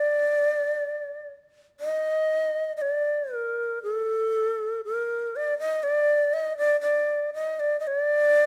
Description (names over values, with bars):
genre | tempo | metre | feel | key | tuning
japanese traditional | 59 BPM | 2/4 | rubato | unclear | A4 = 441 Hz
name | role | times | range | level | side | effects
breathy bright long shakuhachi | solo | 0.0-8.5 s | A4 to Eb5 | -25 LUFS | equal | none
room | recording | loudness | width
light reverb | close, detailed microphones | -26 LUFS | mono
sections
0.0-1.8 A section; 1.8-8.5 B section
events
none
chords
none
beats
0.79 | 1.82 2.85 | 3.87 4.88 | 5.87 6.87 | 7.89